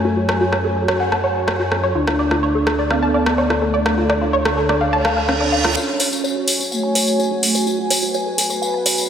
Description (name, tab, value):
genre	melodic techno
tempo	126 BPM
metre	4/4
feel	straight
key	F# harmonic minor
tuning	A4 = 440 Hz
part	expressive portamento lead	melody	0.0-8.1 s	A3 to D4	-24 LUFS	right 1 dB	wide subtle chorus, diffuse ambient delay
part	dark analog pad	sustained chords	0.0-9.1 s	D4 to G#5	-22 LUFS	right 1 dB	chorus
part	tight sequenced synth	arpeggios	0.0-8.9 s	C#4 to A5	-22 LUFS	equal	chorus, phaser, analog delay
part	dark detuned saw bass	bass	0.0-5.7 s	D2 to F#2	-24 LUFS	equal	none
part	house drum kit	drums	0.3-9.0 s	hi-hat, rim click	-21 LUFS	equal	none
part	reverse cymbal	sound effects	5.0-5.8 s	none	-24 LUFS	right 4 dB	none
part	tambourine	percussion	5.8-9.1 s	none	-23 LUFS	left 3 dB	none
room	wet lush hall reverb, RT60 2.4 s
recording	dreamy mix soaked in reverb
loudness	-16 LUFS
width	side -8 dB against mid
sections	0.0-5.8 A section; 5.8-9.1 B section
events	filter sweep on synth arpeggio sound 0.0-5.8, 5.8-9.1; filter sweep on analog synth lead 0.0-5.8, 5.8-9.1; reverse cymbal 5.0-5.8; build-up 5.8-9.1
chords	0.0 F#m; 2.0 Dm; 5.8 F#m